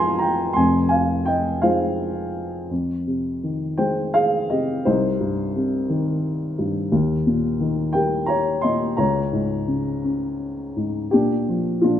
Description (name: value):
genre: classical, lyrical solo piano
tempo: 56 BPM (dotted quarters)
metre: 6/8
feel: rubato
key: Bb dorian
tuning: A4 = 442 Hz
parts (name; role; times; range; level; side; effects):
- dark upright piano; solo; 0.0-12.0 s; F1 to C6; -19 LUFS; left 1 dB; none
room: moderate recital hall reverb, RT60 1.6 s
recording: none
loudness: -19 LUFS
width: side -10 dB against mid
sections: 0.0-2.7 A section; 2.7-11.1 B section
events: none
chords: 0.0 Fm7; 4.8 Cm; 6.9 Eb7; 9.0 Bbm7/Db; 11.1 Bb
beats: | 0.56 1.63 | 2.71 3.79 | 4.85 5.89 | 6.92 7.95 | 8.98 10.04 | 11.13